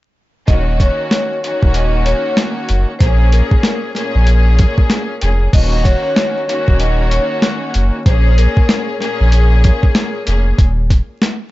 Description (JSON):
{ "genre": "hip hop, boom-bap hip-hop", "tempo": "95 BPM", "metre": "4/4", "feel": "swing 61% on 16ths", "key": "Eb minor", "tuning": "A4 = 440 Hz", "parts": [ { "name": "vibraphone with medium hard mallets", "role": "melody", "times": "0.5-10.1 s", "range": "Bb4 to Eb5", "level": "-22 LUFS", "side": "left 1 dB", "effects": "high-pass filter, low-pass filter, tape echo" }, { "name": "warm studio string section", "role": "accompaniment", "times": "0.5-10.6 s", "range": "Bb2 to Ab4", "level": "-20 LUFS", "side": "left 1 dB", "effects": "high-pass filter, low-pass filter" }, { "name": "saturated sub bass", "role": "bass", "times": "0.5-11.0 s", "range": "Eb1 to Bb1", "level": "-12 LUFS", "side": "equal", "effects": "tube saturation" }, { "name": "dusty soul sampler-style drum kit", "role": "drums", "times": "0.5-11.4 s", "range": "crash cymbal, hi-hat, kick drum, snare drum", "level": "-14 LUFS", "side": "equal", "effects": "overdrive" } ], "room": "little or no reverb", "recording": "dry, gritty hardware recording, vinyl crackle, nothing above 7.7 kHz", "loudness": "-12 LUFS", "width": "side -18 dB against mid", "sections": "0.5-5.5 A section; 5.5-11.5 B section", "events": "none", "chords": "0.5 Ebm7; 3.0 Bbm7; 5.5 Ebm7; 8.1 Bbm7; 10.6 N.C." }